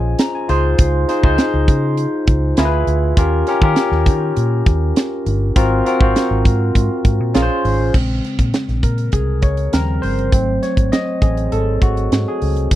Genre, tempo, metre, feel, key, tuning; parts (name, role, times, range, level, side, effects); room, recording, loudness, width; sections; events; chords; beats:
polished 1980s jazz-funk pop; 101 BPM; 4/4; straight; A4 = 440 Hz
barky tine electric piano; accompaniment; 0.0-12.8 s; Db3 to Bb5; -18 LUFS; left 1 dB; overdrive, lush chorus
vintage muted fingered electric bass; bass; 0.0-12.8 s; G1 to Eb3; -18 LUFS; equal
crisp fusion drum kit; drums; 0.2-12.8 s; crash cymbal, hi-hat, kick drum, snare drum; -15 LUFS; equal
little or no reverb; dry, close 1970s-style studio recording; -14 LUFS; side -14 dB against mid
0.0-7.9 A section; 7.9-12.8 B section
tine electric piano solo 7.9-12.8
0.5 Dbmaj7; 2.6 Ddim7; 3.2 Eb9; 5.6 Ab13; 7.3 Bbm7; 7.9 Bbm9; 9.7 Eb13; 10.3 Ab7b9
0.19 | 0.79 1.39 1.98 2.58 | 3.17 3.77 4.37 4.96 | 5.56 6.15 6.75 7.34 | 7.94 8.54 9.13 9.73 | 10.33 10.92 11.52 12.12 | 12.71